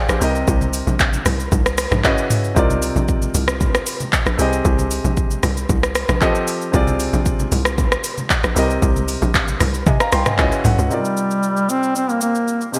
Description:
amapiano; 115 BPM; 4/4; straight; C minor; A4 = 441 Hz
warm grand piano; accompaniment; 0.0-12.8 s; C3 to C6; -25 LUFS; equal
tight log drum bass; bass; 0.1-10.9 s; Bb1 to C3; -23 LUFS; equal
afro-pop drum kit; drums; 0.1-12.8 s; handclaps, hi-hat, kick drum, rim click, shaker, toms; -22 LUFS; equal; gated reverb
congas; percussion; 0.6-10.8 s; -31 LUFS; equal
warm duduk; melody; 10.9-12.7 s; G3 to C4; -20 LUFS; equal; delay
light reverb; bright 1980s-style digital production; -18 LUFS; mono
0.0-10.9 A section; 10.9-12.8 B section
drop 0.0-10.9; grand piano fill 10.1-10.9
0.2 Eb6; 2.0 Dbm11; 2.6 Cm11; 4.4 Bb13sus4; 6.2 F7; 6.7 Bb9; 8.6 Bb13sus4; 10.4 Dbm11; 10.9 Cm11

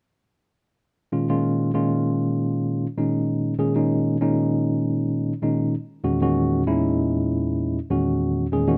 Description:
jazz; 98 BPM; 4/4; straight; A4 = 440 Hz
tine electric piano; accompaniment; 1.1-8.8 s; E2 to Ab4; -22 LUFS; equal
little or no reverb; dry, close 1970s-style studio recording; -23 LUFS; mono
0.8-8.8 A section
0.8 Dbadd9; 5.7 Emaj9

